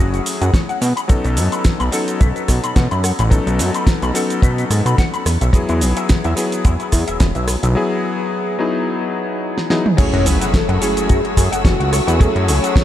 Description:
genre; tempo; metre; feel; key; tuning
nu-disco, nu disco; 108 BPM; 4/4; swing 55% on 16ths; F# dorian; A4 = 441 Hz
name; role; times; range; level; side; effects
clear electric grand piano; accompaniment; 0.0-12.8 s; F#3 to A4; -21 LUFS; left 2 dB; vintage 12-bit sampler grit, ping-pong delay
electric guitar with an envelope filter; riff; 0.0-12.7 s; E4 to B5; -27 LUFS; left 3 dB; ensemble chorus, ping-pong delay
fat analog bass; bass; 0.0-12.6 s; E1 to B2; -17 LUFS; equal; none
pop drum kit; drums; 0.1-12.8 s; crash cymbal, hi-hat, rim click, shaker, snare drum, toms; -23 LUFS; right 1 dB; small room ambience
kick drum; drums; 0.5-12.8 s; none; -14 LUFS; equal; small room ambience
wide unison lead; melody; 10.0-12.8 s; F#4 to C#5; -22 LUFS; equal; wide subtle chorus, ping-pong delay
warm symphonic violin section; sustained chords; 10.0-12.8 s; A3 to E6; -26 LUFS; left 1 dB; sidechain pumping
impact; sound effects; 10.1-12.2 s; none; -27 LUFS; equal; none
room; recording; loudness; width
light reverb, digital ambience; none; -14 LUFS; side -12 dB against mid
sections
0.0-10.0 A section; 10.0-12.8 B section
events
break 7.8-10.0; drum fill 9.6-10.0; drop 10.0-12.8; impact 10.0-12.2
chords
0.0 F#m7; 0.8 B9; 5.3 Emaj7; 10.0 F#m7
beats
0.54 | 1.09 1.65 2.20 2.76 | 3.31 3.87 4.43 4.98 | 5.54 6.09 6.65 7.20 | 7.76 8.31 8.87 9.43 | 9.98 10.54 11.09 11.65 | 12.20 12.76

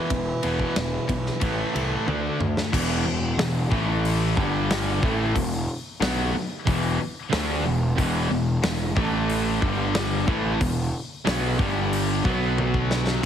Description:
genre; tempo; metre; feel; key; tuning
hard rock; 92 BPM; 4/4; straight; E minor; A4 = 441 Hz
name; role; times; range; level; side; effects
dark bassoon; melody; 0.0-2.1 s; E3; -31 LUFS; right 1 dB; tape echo
sludgy distorted guitar; riff; 0.0-13.3 s; E2 to D4; -28 LUFS; right 8 dB; overdrive
tight distorted guitar; riff; 0.0-13.3 s; E2 to D4; -29 LUFS; left 10 dB; distortion
fuzz picked electric bass; bass; 0.1-13.3 s; E1 to D2; -27 LUFS; equal; overdrive
big rock drum kit; drums; 0.1-13.3 s; crash cymbal, hi-hat, kick drum, ride cymbal, snare drum, toms; -28 LUFS; equal; none
crunchy overdriven guitar; riff; 2.7-13.3 s; E2 to D4; -30 LUFS; equal; none
room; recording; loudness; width
light reverb, small room ambience; heavily compressed radio sound; -22 LUFS; side -9 dB against mid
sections
0.0-2.7 A section; 2.7-13.2 B section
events
drum fill 2.1-2.7, 12.6-13.2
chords
0.0 E5; 1.4 A5; 2.1 D5; 2.7 E5; 3.7 A5; 4.4 G5; 5.0 E5; 9.0 A5; 9.6 G5; 10.3 E5; 11.6 G5; 12.2 B5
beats
| 0.10 0.76 1.42 2.07 | 2.73 3.39 4.04 4.70 | 5.36 6.01 6.67 7.32 | 7.98 8.63 9.29 9.95 | 10.60 11.26 11.91 12.57 | 13.22

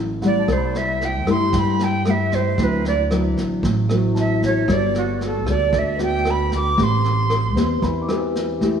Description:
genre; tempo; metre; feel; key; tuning
bossa nova; 114 BPM; 4/4; straight; G major; A4 = 437 Hz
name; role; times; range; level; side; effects
nylon-string guitar; accompaniment; 0.0-8.8 s; G2 to B4; -22 LUFS; left 2 dB; none
warm grand piano; accompaniment; 0.0-8.8 s; F#5 to E6; -36 LUFS; equal; none
upright bass; bass; 0.0-8.8 s; G1 to G2; -23 LUFS; right 1 dB; none
vintage brush drum kit; drums; 0.2-8.7 s; kick drum, rim click, snare drum; -28 LUFS; right 1 dB; none
breathy bright jazz flute; melody; 0.3-7.9 s; F#4 to D6; -22 LUFS; right 3 dB; none
room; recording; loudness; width
wet echo chamber reverb, RT60 1.9 s; heard from further back in the room; -17 LUFS; side -7 dB against mid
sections
0.0-8.8 A section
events
flute solo 0.0-8.8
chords
0.5 C6; 2.6 D9; 4.7 Gmaj9; 6.8 Am9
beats
| 0.48 1.00 1.53 2.05 | 2.58 3.10 3.63 4.15 | 4.68 5.20 5.73 6.25 | 6.78 7.30 7.83 8.35

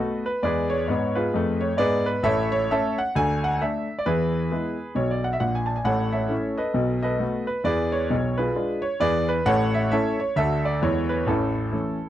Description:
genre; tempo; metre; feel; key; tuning
jazz, stride piano; 133 BPM; 4/4; swing 61% on 8ths; unclear; A4 = 440 Hz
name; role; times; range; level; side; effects
clear grand piano; solo; 0.0-12.1 s; A1 to A5; -22 LUFS; equal; none
room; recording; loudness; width
light reverb; dry, close 1970s-style studio recording; -21 LUFS; side -12 dB against mid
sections
0.0-12.1 A section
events
none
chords
0.4 E; 2.2 A; 3.2 D5; 4.1 E; 5.9 A; 6.8 B7; 7.7 E7b9; 9.5 A; 10.4 D; 10.8 E; 11.3 A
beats
| 0.44 0.90 1.35 1.80 | 2.25 2.70 3.15 3.60 | 4.05 4.51 4.96 5.41 | 5.86 6.31 6.76 7.21 | 7.67 8.12 8.57 9.02 | 9.47 9.92 10.37 10.83 | 11.28 11.73

